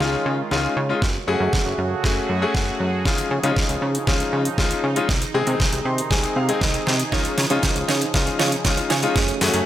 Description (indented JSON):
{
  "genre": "dance-pop",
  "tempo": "118 BPM",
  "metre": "4/4",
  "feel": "straight",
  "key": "Db major",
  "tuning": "A4 = 440 Hz",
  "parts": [
    { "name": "bright grand piano", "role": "accompaniment", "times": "0.0-9.7 s", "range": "Ab3 to C6", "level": "-24 LUFS", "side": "left 4 dB", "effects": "sidechain pumping" },
    { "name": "sweeping resonant pad", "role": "sustained chords", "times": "0.0-9.7 s", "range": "C3 to Ab4", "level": "-28 LUFS", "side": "right 3 dB", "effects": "chorus, sidechain pumping" },
    { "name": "plucky analog bass", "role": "bass", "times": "0.0-9.6 s", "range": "Gb1 to Db3", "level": "-24 LUFS", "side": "right 1 dB", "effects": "sidechain pumping" },
    { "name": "smooth R&B drum kit", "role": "drums", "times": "0.0-9.7 s", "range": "hi-hat, kick drum, snare drum", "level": "-22 LUFS", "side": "right 1 dB", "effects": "none" },
    { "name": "direct-recorded clean electric guitar", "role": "riff", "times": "7.1-9.7 s", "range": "A3 to Db5", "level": "-27 LUFS", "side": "right 8 dB", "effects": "lush chorus" },
    { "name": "group handclap", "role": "percussion", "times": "7.6-8.8 s", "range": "none", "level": "-33 LUFS", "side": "right 6 dB", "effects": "none" }
  ],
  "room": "light reverb, digital ambience",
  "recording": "none",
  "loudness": "-18 LUFS",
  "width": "side -12 dB against mid",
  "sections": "0.0-9.7 A section",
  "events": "build-up 0.0-9.7; drum fill 0.0-9.7; grand piano fill 2.3-3.1, 5.6-7.1",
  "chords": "0.0 Dbadd9; 1.0 Gbmadd9; 3.1 Dbadd9; 5.1 Ab/C; 7.1 Dbadd9; 9.2 Gbmadd9",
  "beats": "0.01 0.51 | 1.02 1.53 2.04 2.55 | 3.06 3.56 4.07 4.58 | 5.09 5.60 6.11 6.62 | 7.12 7.63 8.14 8.65 | 9.16"
}